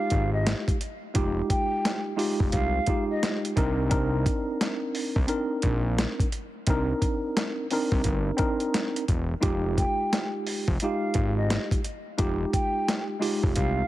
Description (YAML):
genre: hip hop, boom-bap hip-hop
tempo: 87 BPM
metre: 4/4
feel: swing 62% on 16ths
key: F minor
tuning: A4 = 440 Hz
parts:
  - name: breathy concert flute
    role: melody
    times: 0.0-3.4, 9.8-13.9 s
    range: Eb5 to G5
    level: -32 LUFS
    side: equal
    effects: high-pass filter, low-pass filter, ping-pong delay
  - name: mellow tine electric piano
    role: accompaniment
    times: 0.0-13.9 s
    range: Ab3 to Bb4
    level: -28 LUFS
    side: right 1 dB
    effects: medium stereo tremolo, cassette tape, high-pass filter, low-pass filter
  - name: fat analog bass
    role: bass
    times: 0.1-13.8 s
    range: E1 to C2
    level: -28 LUFS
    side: equal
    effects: none
  - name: dusty soul sampler-style drum kit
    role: drums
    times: 0.1-13.8 s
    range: hi-hat, kick drum, snare drum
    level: -27 LUFS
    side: equal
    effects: overdrive
room: little or no reverb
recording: heavily compressed radio sound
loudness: -24 LUFS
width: side -15 dB against mid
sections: 0.0-13.9 A section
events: none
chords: 0.0 Fm9; 3.6 Cm9; 9.4 Fm9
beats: 0.47 | 1.16 1.84 2.53 3.22 | 3.91 4.60 5.29 5.98 | 6.67 7.36 8.05 8.74 | 9.43 10.12 10.81 11.50 | 12.19 12.88 13.57